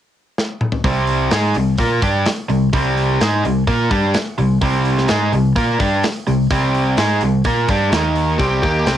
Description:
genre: hard rock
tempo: 127 BPM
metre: 4/4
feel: straight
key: C minor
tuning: A4 = 442 Hz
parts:
  - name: tight metal drum kit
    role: drums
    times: 0.4-9.0 s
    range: hi-hat, kick drum, snare drum, toms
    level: -22 LUFS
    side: equal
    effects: none
  - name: cranked stack guitar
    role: riff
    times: 0.8-9.0 s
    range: C3 to Bb4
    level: -18 LUFS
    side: right 6 dB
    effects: overdrive, cassette tape
  - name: picked electric bass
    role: bass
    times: 0.8-9.0 s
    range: C2 to Bb2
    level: -20 LUFS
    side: left 1 dB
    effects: none
  - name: overdriven electric guitar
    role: riff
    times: 0.9-9.0 s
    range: C3 to Bb4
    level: -21 LUFS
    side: left 11 dB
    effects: cassette tape
  - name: high-gain lead guitar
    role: melody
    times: 8.4-9.0 s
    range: G4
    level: -19 LUFS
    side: left 1 dB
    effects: distortion
room: light reverb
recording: home recording on cassette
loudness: -14 LUFS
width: side -11 dB against mid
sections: 0.8-8.4 A section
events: drum fill 0.4-0.8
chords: 0.0 N.C.; 0.8 Cm; 7.9 Eb5; 8.4 Cm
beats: 0.38 | 0.85 1.32 1.79 2.26 | 2.73 3.20 3.67 4.14 | 4.62 5.09 5.56 6.03 | 6.50 6.98 7.45 7.92 | 8.39 8.87

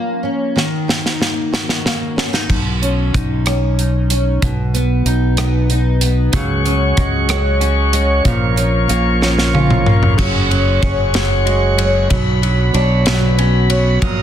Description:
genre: six-eight pop ballad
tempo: 62 BPM (dotted quarters)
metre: 6/8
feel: straight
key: unclear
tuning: A4 = 440 Hz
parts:
  - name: fingerpicked steel-string acoustic guitar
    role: accompaniment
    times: 0.0-14.2 s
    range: F#2 to C#5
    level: -19 LUFS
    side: left 1 dB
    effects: double-tracked left and right
  - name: modern studio drum kit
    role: drums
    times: 0.6-14.2 s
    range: crash cymbal, hi-hat, kick drum, ride cymbal, rim click, snare drum, toms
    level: -18 LUFS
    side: equal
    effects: soft clipping on snare
  - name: fingered electric bass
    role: bass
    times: 2.5-14.2 s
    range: F#1 to C#2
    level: -16 LUFS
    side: equal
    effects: none
  - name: tonewheel organ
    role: sustained chords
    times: 6.3-14.2 s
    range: F#3 to D#6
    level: -20 LUFS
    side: equal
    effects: slow rotary speaker
  - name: direct-recorded clean electric guitar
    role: arpeggios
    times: 6.3-14.2 s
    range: E#3 to D4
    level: -24 LUFS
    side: right 7 dB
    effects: none
room: little or no reverb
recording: dense, heavily limited modern master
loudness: -13 LUFS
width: side -10 dB against mid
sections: 0.0-2.5 A section; 2.5-10.2 B section; 10.2-14.2 C section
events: drum fill 0.6-2.5, 9.2-10.2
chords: 0.0 A#m/E#; 0.6 D#m; 2.5 Badd9; 4.4 B; 6.3 C#sus4; 8.3 A#m; 10.2 F#sus2; 12.1 Bmadd9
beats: | 0.56 1.53 | 2.50 3.46 | 4.42 5.38 | 6.33 7.29 | 8.25 9.22 | 10.19 11.15 | 12.11 13.06 | 14.02

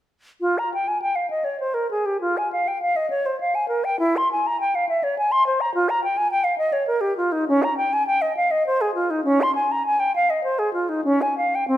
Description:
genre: classical, baroque-style fantasia for unaccompanied flute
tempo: 101 BPM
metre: 3/4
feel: uneven beats, rubato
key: unclear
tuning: A4 = 443 Hz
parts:
  - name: concert flute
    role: solo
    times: 0.4-11.8 s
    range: C4 to C6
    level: -19 LUFS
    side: equal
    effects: none
room: moderate recital hall reverb, RT60 1.6 s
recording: none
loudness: -19 LUFS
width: side -12 dB against mid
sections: 0.4-11.8 A section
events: none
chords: none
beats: | 0.40 1.01 1.60 | 2.21 2.80 3.38 | 3.99 4.60 5.17 | 5.75 6.31 6.89 | 7.49 8.08 8.67 | 9.25 9.84 10.44 | 11.05 11.66

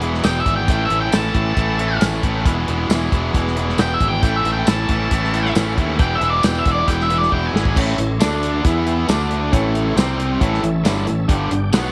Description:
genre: classic rock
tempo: 136 BPM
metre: 4/4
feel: straight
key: A mixolydian from 7.8 s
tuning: A4 = 440 Hz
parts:
  - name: bright tonewheel organ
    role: sustained chords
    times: 0.0-11.9 s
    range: A3 to G5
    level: -36 LUFS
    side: equal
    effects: none
  - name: biting overdriven guitar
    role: riff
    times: 0.0-11.9 s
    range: E2 to E4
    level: -26 LUFS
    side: equal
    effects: none
  - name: cranked stack guitar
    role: riff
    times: 0.0-11.9 s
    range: E2 to E4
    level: -26 LUFS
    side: equal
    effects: overdrive
  - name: modern bright fingered electric bass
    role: bass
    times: 0.0-11.9 s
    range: E1 to E2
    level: -25 LUFS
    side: equal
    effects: none
  - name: damped 70s drum kit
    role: drums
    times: 0.0-11.8 s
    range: crash cymbal, hi-hat, kick drum, snare drum, tambourine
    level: -22 LUFS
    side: equal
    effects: none
  - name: octave-fuzz lead guitar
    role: melody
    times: 0.2-7.8 s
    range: D5 to A5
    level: -24 LUFS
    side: equal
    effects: distortion, tape echo
  - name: reed electric piano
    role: accompaniment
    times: 7.8-11.9 s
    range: A3 to G5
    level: -30 LUFS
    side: equal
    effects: overdrive, spring reverb
room: light reverb, small room reverb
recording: none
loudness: -18 LUFS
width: mono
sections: 0.0-7.8 A section; 7.8-11.9 B section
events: lead electric guitar solo 0.0-7.8; drum fill 7.3-7.8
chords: 0.0 E; 0.7 A; 2.5 E; 4.2 A; 6.0 E; 7.8 A; 8.2 D5; 8.6 E5; 9.1 D5; 9.5 A; 10.0 C5; 10.4 A; 11.3 G5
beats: 0.24 | 0.68 1.13 1.57 2.01 | 2.46 2.90 3.34 3.78 | 4.23 4.67 5.11 5.55 | 6.00 6.44 6.88 7.32 | 7.76 8.21 8.65 9.09 | 9.53 9.97 10.41 10.85 | 11.29 11.73

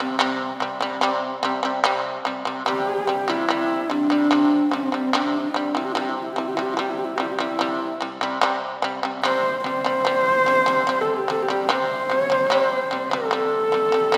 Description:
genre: mongolian traditional, Mongolian folk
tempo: 73 BPM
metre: 4/4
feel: straight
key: C gong mode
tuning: A4 = 440 Hz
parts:
  - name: dark horsehead fiddle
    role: melody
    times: 0.0-14.2 s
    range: C4 to C5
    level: -24 LUFS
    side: equal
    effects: slapback echo
  - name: shamisen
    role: arpeggios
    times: 0.0-14.2 s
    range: C3 to G3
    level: -26 LUFS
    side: equal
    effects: none
room: wet concert hall reverb, RT60 2.0 s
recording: none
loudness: -22 LUFS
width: mono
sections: 0.0-14.2 A section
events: none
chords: 0.0 C5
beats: | 0.20 1.02 1.85 2.67 | 3.49 4.31 5.13 5.96 | 6.78 7.60 8.42 9.24 | 10.06 10.87 11.69 12.51 | 13.32 14.13

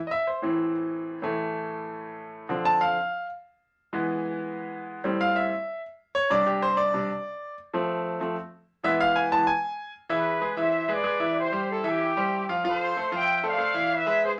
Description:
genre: latin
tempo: 189 BPM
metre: 4/4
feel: straight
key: A minor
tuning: A4 = 440 Hz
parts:
  - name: bright grand piano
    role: accompaniment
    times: 0.1-14.3 s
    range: A2 to A5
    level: -28 LUFS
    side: equal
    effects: none
  - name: dark trumpet section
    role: melody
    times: 10.1-14.3 s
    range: E4 to G5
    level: -28 LUFS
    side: equal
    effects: none
room: wet studio reverb, RT60 0.5 s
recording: none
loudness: -27 LUFS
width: mono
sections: 0.0-10.1 A section; 10.1-14.4 B section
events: grand piano solo 0.0-10.1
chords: 0.0 Am; 1.2 A5; 2.5 Dm7; 3.8 E; 5.0 Am7; 6.3 Csus2; 7.6 F; 8.8 E; 10.1 E7; 11.4 C; 12.6 F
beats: 0.27 0.59 0.91 | 1.23 1.55 1.86 2.18 | 2.50 2.82 3.14 3.46 | 3.77 4.09 4.41 4.73 | 5.04 5.36 5.68 5.99 | 6.31 6.63 6.94 7.26 | 7.58 7.89 8.21 8.53 | 8.84 9.16 9.48 9.79 | 10.11 10.43 10.74 11.06 | 11.38 11.69 12.01 12.33 | 12.64 12.96 13.28 13.59 | 13.91 14.23

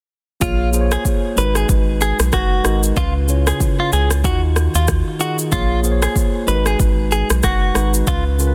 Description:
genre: afrobeats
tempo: 94 BPM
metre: 4/4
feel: swing 58% on 16ths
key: G# dorian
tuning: A4 = 440 Hz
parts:
  - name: direct-recorded clean electric guitar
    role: melody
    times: 0.4-8.2 s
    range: E#4 to B4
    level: -25 LUFS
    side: equal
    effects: delay
  - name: tine electric piano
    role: accompaniment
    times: 0.4-8.5 s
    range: C#3 to C#5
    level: -25 LUFS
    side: equal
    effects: none
  - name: round analog bass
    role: bass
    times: 0.4-8.5 s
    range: F#1 to D#2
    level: -20 LUFS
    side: equal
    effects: none
  - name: afro-pop drum kit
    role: drums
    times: 0.4-8.5 s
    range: kick drum, rim click, shaker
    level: -22 LUFS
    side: equal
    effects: overdrive
room: little or no reverb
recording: dense, heavily limited modern master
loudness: -17 LUFS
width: mono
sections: 0.4-8.5 A section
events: none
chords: 0.4 A#m7; 1.4 G#m7; 3.0 C#7; 4.2 D#madd9; 5.5 A#m7; 6.5 G#m7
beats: | 0.41 1.05 1.69 2.33 | 2.97 3.60 4.24 4.88 | 5.52 6.16 6.80 7.43 | 8.07

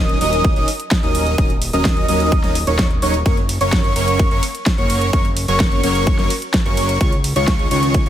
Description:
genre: EDM, festival progressive house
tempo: 128 BPM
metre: 4/4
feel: straight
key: F# major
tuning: A4 = 439 Hz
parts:
  - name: wide unison lead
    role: arpeggios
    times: 0.0-8.1 s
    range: C#6 to D#6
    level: -23 LUFS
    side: equal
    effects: sidechain pumping, dub echo
  - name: supersaw chords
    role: riff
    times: 0.0-8.1 s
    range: D#3 to D#5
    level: -20 LUFS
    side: equal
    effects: wide subtle chorus, sidechain pumping, dub echo
  - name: fat analog bass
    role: bass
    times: 0.0-8.1 s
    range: D#1 to C#2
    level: -22 LUFS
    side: equal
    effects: sidechain pumping
  - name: big-room dance drum kit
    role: drums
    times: 0.1-8.1 s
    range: hi-hat, ride cymbal, snare drum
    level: -24 LUFS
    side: equal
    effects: overdrive
  - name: electronic kick drum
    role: drums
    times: 0.4-8.0 s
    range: none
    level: -17 LUFS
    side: equal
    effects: overdrive
room: light reverb, digital ambience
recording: none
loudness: -14 LUFS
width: side -11 dB against mid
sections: 0.0-8.1 A section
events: none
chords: 0.0 D#m7; 3.3 F#; 7.0 C#add9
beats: 0.45 0.91 | 1.38 1.85 2.32 2.79 | 3.26 3.73 4.20 4.66 | 5.13 5.60 6.07 6.54 | 7.01 7.48 7.95

